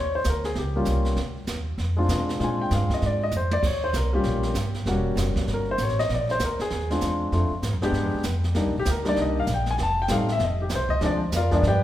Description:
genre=jazz piano trio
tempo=195 BPM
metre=4/4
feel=swing 63% on 8ths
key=Bb mixolydian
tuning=A4 = 440 Hz
part: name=warm grand piano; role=melody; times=0.0-11.8 s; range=F3 to A5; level=-25 LUFS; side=left 1 dB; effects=none
part: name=upright bass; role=bass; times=0.0-11.8 s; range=E1 to C3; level=-26 LUFS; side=equal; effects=none
part: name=jazz brush drum kit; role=drums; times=0.2-11.8 s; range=brushed snare drum, crash cymbal, hi-hat, kick drum, snare drum, toms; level=-32 LUFS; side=right 2 dB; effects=none
room=moderate recital hall reverb, RT60 1.6 s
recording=recorded in a church or concert hall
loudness=-22 LUFS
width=side -13 dB against mid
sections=0.0-11.8 A section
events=grand piano solo 0.0-11.8; drum fill 3.3-3.6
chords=0.0 Eb7; 1.2 Bb7; 3.6 Eb7; 4.9 Edim7; 6.1 Bb7; 7.3 Dm7; 7.9 G7b9; 8.6 Cm7; 9.8 F7; 11.0 Bb7

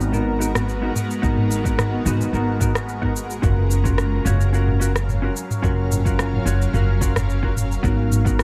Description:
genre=sunset chillout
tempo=109 BPM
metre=4/4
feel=straight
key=G# dorian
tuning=A4 = 440 Hz
part: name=vintage hollow-body jazz guitar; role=accompaniment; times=0.0-8.4 s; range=B3 to C#5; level=-28 LUFS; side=equal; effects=low-pass filter, tape echo
part: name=shimmering ambient pad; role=sustained chords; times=0.0-8.4 s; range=F#3 to E#5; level=-31 LUFS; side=equal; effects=chorus, built-in reverb, phaser
part: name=upright bass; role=bass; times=0.0-8.4 s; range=F#1 to G#1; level=-23 LUFS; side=equal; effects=tube saturation
part: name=smooth R&B drum kit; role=drums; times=0.0-8.4 s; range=rim click, shaker, toms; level=-27 LUFS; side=equal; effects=none
part: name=electronic kick drum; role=drums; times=1.2-8.4 s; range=none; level=-25 LUFS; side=equal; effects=overdrive
room=light reverb, digital ambience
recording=dark, warm production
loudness=-20 LUFS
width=mono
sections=0.0-8.4 A section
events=none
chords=0.0 G#m9; 3.4 F#maj7; 7.8 G#m9

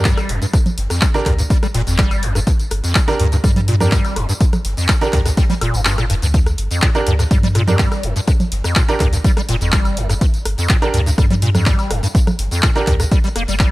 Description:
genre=acid house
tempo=124 BPM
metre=4/4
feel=straight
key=G minor pentatonic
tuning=A4 = 439 Hz
part: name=acid bass, square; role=riff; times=0.0-13.7 s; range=F2 to Bb3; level=-20 LUFS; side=equal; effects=ensemble chorus, sidechain pumping
part: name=warm sub bass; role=bass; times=0.0-13.7 s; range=F1 to G2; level=-19 LUFS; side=equal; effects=sidechain pumping
part: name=punchy analog drum machine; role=drums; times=0.0-13.7 s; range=congas, handclaps, hi-hat, rim click, tambourine, woodblock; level=-22 LUFS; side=equal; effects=overdrive
part: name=electronic kick drum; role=drums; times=0.1-13.7 s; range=none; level=-15 LUFS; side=equal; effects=overdrive
part: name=open jazz drum kit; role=drums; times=0.1-13.7 s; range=hi-hat, snare drum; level=-36 LUFS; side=left 2 dB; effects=none
part: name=clear baby grand piano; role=stabs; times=1.1-12.9 s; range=D4 to Bb4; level=-22 LUFS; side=right 3 dB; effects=tape echo
room=small room ambience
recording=none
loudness=-14 LUFS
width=side -18 dB against mid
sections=0.0-13.7 A section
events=kick drops out 5.9-6.3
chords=0.0 Gm

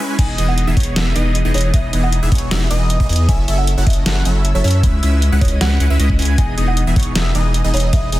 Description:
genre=future bass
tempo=155 BPM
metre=4/4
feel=half-time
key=E major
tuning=A4 = 440 Hz
part: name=supersaw stab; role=riff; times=0.0-8.2 s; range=E3 to G#5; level=-21 LUFS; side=equal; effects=phaser, sidechain pumping
part: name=folk marimba with soft mallets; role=melody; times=0.2-8.2 s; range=C#5 to G#5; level=-28 LUFS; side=right 3 dB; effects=sidechain pumping, tape echo
part: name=airy dreamy lead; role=arpeggios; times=0.2-8.2 s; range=C#5 to G#5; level=-28 LUFS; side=equal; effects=chorus, sidechain pumping, tape echo
part: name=saturated sub bass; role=bass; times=0.2-8.2 s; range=E1 to F#2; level=-16 LUFS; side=equal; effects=sidechain pumping
part: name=dubstep drum kit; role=drums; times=0.2-8.2 s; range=crash cymbal, hi-hat, snare drum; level=-22 LUFS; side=equal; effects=overdrive, high-pass filter on snare, high-pass filter on hats, high-pass filter on cymbals, high-pass filter on room
part: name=electronic kick drum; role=drums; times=0.2-8.0 s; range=none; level=-15 LUFS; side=equal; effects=none
room=little or no reverb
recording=dense, heavily limited modern master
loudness=-13 LUFS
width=side -16 dB against mid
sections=0.2-8.2 A section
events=break 0.0; drop 0.2-8.2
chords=0.2 Emaj7; 3.3 F#m7; 4.8 C#m7; 6.4 Emaj7

